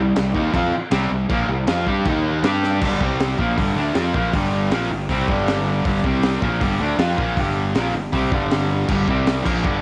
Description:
garage rock duo or trio; 158 BPM; 4/4; straight; A4 = 439 Hz
fuzz guitar; riff; 0.0-9.8 s; G2 to G4; -22 LUFS; equal; distortion
fuzz fingered electric bass; bass; 0.0-9.8 s; G1 to G2; -27 LUFS; equal; overdrive
crunchy breakbeat drum kit; drums; 0.2-9.7 s; crash cymbal, hi-hat, kick drum, snare drum; -26 LUFS; equal
small room ambience; -20 LUFS; mono
0.0-2.8 A section; 2.8-9.8 B section
drum fill 2.6
0.0 C5; 2.1 Eb5; 2.4 G5; 3.0 C5; 3.4 G5; 6.0 C5; 6.4 G5; 9.1 C5

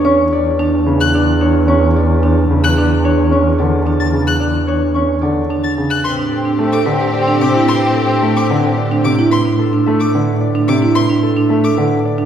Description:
classical, minimalist pattern music; 110 BPM; 3/4; straight; A minor from 6.0 s; A4 = 441 Hz
Celtic harp; melody; 0.0-12.3 s; A4 to C#6; -23 LUFS; left 8 dB
warm grand piano; accompaniment; 0.0-12.0 s; C3 to C#4; -20 LUFS; left 1 dB
marimba with soft mallets; arpeggios; 0.0-12.3 s; D4 to C#5; -16 LUFS; right 3 dB
warm double bass; bass; 0.0-12.3 s; E2 to A2; -17 LUFS; right 1 dB
rich violin; arpeggios; 1.0-11.7 s; C6 to A6; -23 LUFS; left 4 dB
mellow soprano saxophone; second line; 6.0-9.1 s; C4; -20 LUFS; left 1 dB
clear studio string section; sustained chords; 6.0-9.1 s; C4 to G4; -21 LUFS; left 3 dB
wet scoring stage reverb, RT60 1.9 s; recorded in a church or concert hall; -12 LUFS; side -9 dB against mid
0.0-6.0 A section; 6.0-12.3 B section
0.0 D5/E; 6.0 Am9

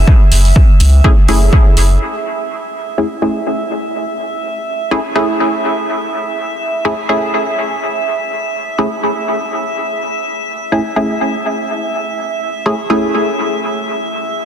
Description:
dub techno; free time; A4 = 438 Hz
filtered dub chord stab; stabs; 0.0-14.4 s; A3 to G#4; -17 LUFS; equal; chorus, phaser, sidechain pumping, dub echo
round analog bass; bass; 0.0-2.0 s; F#1 to C#2; -10 LUFS; equal; sidechain pumping
drifting glass-harmonics texture; texture; 0.0-14.4 s; E5; -21 LUFS; right 2 dB; chorus, built-in reverb, sidechain pumping
electronic kick drum; drums; 0.1-1.6 s; -9 LUFS; equal; overdrive
deep house drum kit; drums; 0.3-2.1 s; crash cymbal, hi-hat; -20 LUFS; right 1 dB; overdrive, low-pass filter on hats, low-pass filter on cymbals
moderate huge ambient reverb, RT60 4.7 s; dense, heavily limited modern master; -13 LUFS; side -9 dB against mid
0.0-2.0 A section; 2.0-14.4 B section
0.0 F#m7; 2.0 Amaj7

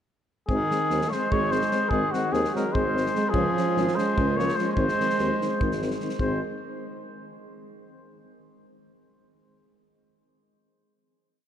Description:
balkan folk, Balkan brass band; 294 BPM (eighths); 7/8; straight; Ab mixolydian; A4 = 440 Hz
warm flugelhorn; melody; 0.5-6.4 s; Gb4 to Db5; -27 LUFS; left 2 dB
clear alto saxophone; second line; 0.5-6.4 s; Eb3 to Bb3; -29 LUFS; right 3 dB
mellow trombone; accompaniment; 0.5-6.4 s; Eb3 to Ab3; -34 LUFS; right 3 dB
warm French horn; accompaniment; 0.5-6.4 s; C4 to Db4; -33 LUFS; left 4 dB
warm tuba; bass; 0.5-6.4 s; Ab1 to Eb2; -30 LUFS; equal
loose indie drum kit; percussion; 0.5-6.4 s; kick drum, snare drum; -32 LUFS; equal
wet cathedral reverb, RT60 5.2 s; in a vast, echoing space; -22 LUFS; side -9 dB against mid
0.5-6.2 A section; 6.2-7.6 final chord
0.5 Ab; 3.3 Db; 4.8 Ab

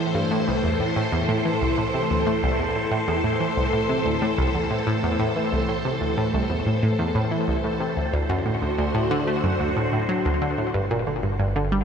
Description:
ambient, sequencer-driven space music; 92 BPM; 4/4; straight; A minor; A4 = 440 Hz
phased string machine; sustained chords; 0.0-11.8 s; D2 to C5; -24 LUFS; equal; ensemble chorus, phaser, shimmer reverb
analog pluck; riff; 0.0-11.8 s; C2 to A3; -23 LUFS; equal; chorus, phaser, ping-pong delay
fat analog bass; bass; 10.7-11.8 s; G1; -31 LUFS; equal
wet huge ambient reverb, RT60 9.2 s; -21 LUFS; side -7 dB against mid
0.0-10.7 A section; 10.7-11.8 B section
0.0 Am; 8.1 D7; 10.7 Gm7

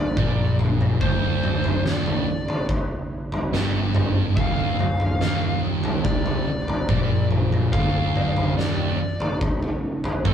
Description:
stoner and doom metal; 71 BPM; 4/4; straight; A4 = 440 Hz
fuzz lead guitar; melody; 0.0-10.3 s; A4 to F5; -29 LUFS; left 1 dB; distortion
thick fuzz guitar; riff; 0.0-10.3 s; D2 to C3; -28 LUFS; left 8 dB; distortion
thick fuzz guitar; riff; 0.0-10.3 s; D2 to C3; -25 LUFS; right 5 dB; distortion
fuzz picked electric bass; bass; 0.0-10.3 s; D1 to C2; -30 LUFS; equal; overdrive, tube saturation
oversized low-tuned drum kit; drums; 0.2-10.3 s; kick drum, snare drum, toms; -23 LUFS; equal
moderate large studio reverb, RT60 0.9 s; band playing live in one room; -20 LUFS; side -8 dB against mid
0.0-10.3 A section
0.0 Cm9/D (rootless)

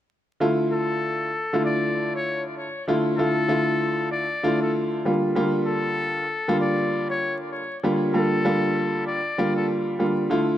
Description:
hip hop; 97 BPM; 4/4; swing 62% on 16ths; D minor; A4 = 440 Hz
clear concert grand piano; accompaniment; 0.4-10.6 s; D3 to F4; -22 LUFS; equal
trumpet with metal mute; melody; 0.7-9.7 s; A4 to D5; -27 LUFS; left 2 dB; digital delay
light reverb, small room ambience; vinyl crackle; -21 LUFS; side -12 dB against mid
0.4-10.6 A section
0.4 Dmadd9; 5.0 Gm9/D

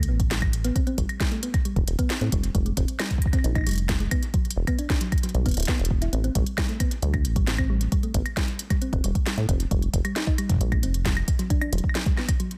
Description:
IDM; 134 BPM; 4/4; straight; A4 = 440 Hz
thumb-piano-like synth pluck; arpeggios; 0.0-12.5 s; F#3 to E4; -34 LUFS; equal; chorus, dub echo
deep acid bass; bass; 0.0-11.8 s; D1 to A2; -27 LUFS; equal
industrial drum kit; drums; 0.0-12.6 s; claves, hi-hat, snare drum; -33 LUFS; equal; studio reverb
electronic kick drum; drums; 0.2-12.4 s; -27 LUFS; equal; studio reverb
little or no reverb; dense, heavily limited modern master; -25 LUFS; mono
0.0-12.6 A section
break 12.4
0.0 Am9; 2.3 Fsus2; 4.1 E7sus2; 6.1 Am7; 9.5 Fsus2; 11.3 E7sus2 (rootless)

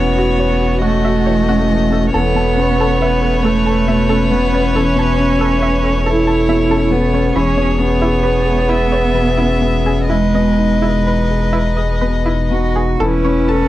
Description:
neoclassical piano and strings; 39-47 BPM (dotted quarters); 6/8; rubato; E major; A4 = 440 Hz
rich violin; melody; 0.0-13.7 s; B4 to E5; -22 LUFS; left 5 dB
rich cello; second line; 0.0-13.7 s; G#3 to A4; -17 LUFS; right 4 dB
felt-muted upright piano; accompaniment; 0.0-13.7 s; E2 to C#5; -20 LUFS; left 6 dB
rich viola; accompaniment; 0.0-13.7 s; C#4 to C#5; -24 LUFS; right 1 dB
bright symphonic string section; sustained chords; 0.0-13.7 s; G#3 to C#5; -30 LUFS; left 1 dB
pure sine sub bass; bass; 0.0-13.7 s; E1; -18 LUFS; equal
string-like resonator pluck; arpeggios; 0.2-13.6 s; E4 to A5; -24 LUFS; right 2 dB; chorus
little or no reverb; dry, close 1970s-style studio recording; -12 LUFS; side -14 dB against mid
0.0-13.0 A section
0.0 F#m7/E; 2.1 Aadd9/E; 7.4 E6; 10.1 Emaj7; 13.0 Aadd9/E

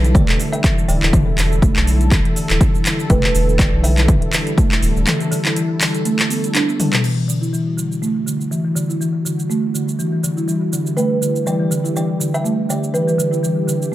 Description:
afro house; 122 BPM; 4/4; swing 55% on 16ths; E minor; A4 = 439 Hz
kalimba; melody; 0.0-6.5, 11.0-13.9 s; B4 to E5; -23 LUFS; right 2 dB; vintage 12-bit sampler grit, ping-pong delay
warm analog pad; sustained chords; 0.0-13.9 s; D3 to A4; -25 LUFS; left 1 dB; chorus, sidechain pumping
buzzing marimba with soft mallets; arpeggios; 0.0-13.9 s; B2 to E4; -20 LUFS; equal; sidechain pumping, low-pass filter, ping-pong delay
round analog bass; bass; 0.0-5.0 s; D1 to B1; -18 LUFS; equal; sidechain pumping
house drum kit; drums; 0.0-13.9 s; cabasa, crash cymbal, handclaps, hi-hat, toms; -21 LUFS; equal; overdrive
electronic kick drum; drums; 0.1-4.7 s; -16 LUFS; equal; overdrive
light reverb; -15 LUFS; side -14 dB against mid
0.0-7.0 A section; 7.0-13.9 B section
filter sweep on analog synth pad 7.0-13.9
0.0 Em7; 7.0 Em9

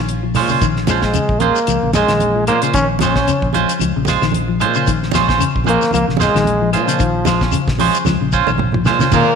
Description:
afrobeat; 113 BPM; 4/4; swing 55% on 16ths; Bb minor; A4 = 440 Hz
semi-hollow electric guitar; arpeggios; 0.0-9.3 s; Db3 to Ab3; -21 LUFS; left 10 dB; lush chorus
fingered electric bass; bass; 0.0-9.2 s; Bb1 to Bb2; -21 LUFS; equal
damped 70s drum kit; drums; 0.1-9.3 s; crash cymbal, hi-hat, kick drum, snare drum, toms; -22 LUFS; left 1 dB
congas; percussion; 0.3-9.3 s; -23 LUFS; right 10 dB
shekere; percussion; 0.3-9.3 s; -27 LUFS; left 6 dB
clean electric guitar; stabs; 0.4-9.3 s; Ab3 to C5; -19 LUFS; right 8 dB
claves; percussion; 0.4-9.0 s; -31 LUFS; left 14 dB
bright trombone; melody; 0.9-9.4 s; F3 to Db4; -18 LUFS; equal; slapback echo
bright trombone section; second line; 9.1-9.4 s; Bb2; -22 LUFS; left 13 dB
brilliant trumpet; second line; 9.1-9.4 s; Bb4; -20 LUFS; right 11 dB
moderate echo chamber reverb, RT60 1.7 s, small room ambience; 1960s-style stereo with parts hard left and right; -13 LUFS; side -6 dB against mid
0.0-9.1 A section
drum fill 0.0-0.6, 8.1-9.1
0.0 Bbm9

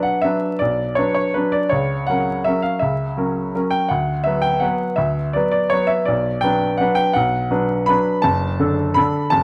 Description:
classical, piano waltz; 165 BPM; 3/4; uneven beats, rubato; B minor; A4 = 439 Hz
bright baby grand piano; solo; 0.0-9.4 s; F#1 to B5; -19 LUFS; equal
moderate scoring stage reverb, RT60 1.6 s; close, detailed microphones, vinyl crackle; -19 LUFS; mono
0.0-9.4 A section
0.0 Bm; 1.7 F#7/C#; 3.9 Bm/D; 6.1 Bm; 8.3 D/F#

